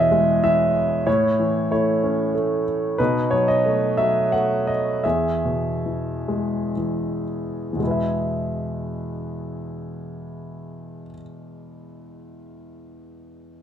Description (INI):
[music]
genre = classical, lyrical solo piano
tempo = 56-95 BPM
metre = 3/4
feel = rubato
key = E major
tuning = A4 = 441 Hz
[part]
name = clear concert grand piano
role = solo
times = 0.0-13.6 s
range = E2 to F#5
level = -21 LUFS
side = equal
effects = none
[sound]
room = moderate recital hall reverb, RT60 1.2 s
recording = minimal, uncompressed stereo recording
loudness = -20 LUFS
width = side -9 dB against mid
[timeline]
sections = 0.0-7.8 A section; 7.8-13.6 B section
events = slowing down 3.0-7.8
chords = 0.0 E; 1.1 A; 3.0 B7; 5.0 E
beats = 0.43 | 1.07 1.71 2.35 | 3.00 3.65 4.32 | 5.05 5.84 6.76 | 7.80 8.88 9.92 | 10.92 11.92 12.92